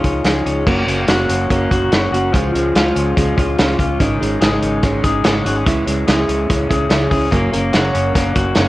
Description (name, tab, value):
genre	jangly indie pop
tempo	144 BPM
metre	4/4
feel	straight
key	unclear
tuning	A4 = 440 Hz
part	fingerpicked plugged-in steel-string acoustic guitar	accompaniment	0.0-8.7 s	Gb2 to Ab4	-19 LUFS	right 2 dB	none
part	electric guitar through a small old amp	arpeggios	0.0-8.7 s	Eb3 to Ab4	-20 LUFS	left 3 dB	spring reverb, tape echo
part	vintage muted fingered electric bass	bass	0.0-8.7 s	Gb1 to Db2	-22 LUFS	equal	none
part	vintage drum kit	drums	0.0-8.7 s	crash cymbal, hi-hat, kick drum, snare drum	-18 LUFS	equal	none
room	light reverb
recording	worn, warbling old tape, cassette tape, warbly pitch drift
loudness	-13 LUFS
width	side -17 dB against mid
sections	0.7-8.7 A section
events	none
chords	0.0 Dbadd9; 0.7 Gb; 2.3 Db; 4.0 Absus4; 5.7 Dbm; 7.3 Gb